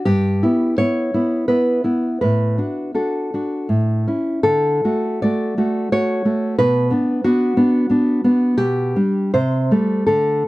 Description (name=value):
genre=romantic piece for solo classical guitar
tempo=74-91 BPM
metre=3/4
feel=rubato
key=D major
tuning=A4 = 440 Hz
part: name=nylon-string guitar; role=solo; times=0.0-10.5 s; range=G2 to D5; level=-16 LUFS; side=equal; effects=none
room=light reverb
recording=dry, close 1970s-style studio recording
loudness=-16 LUFS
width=side -19 dB against mid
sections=0.0-10.5 A section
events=none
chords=0.1 Em/G; 2.2 D/A; 3.7 A; 4.4 D; 6.6 Bm; 8.6 G/B; 9.3 Am7/C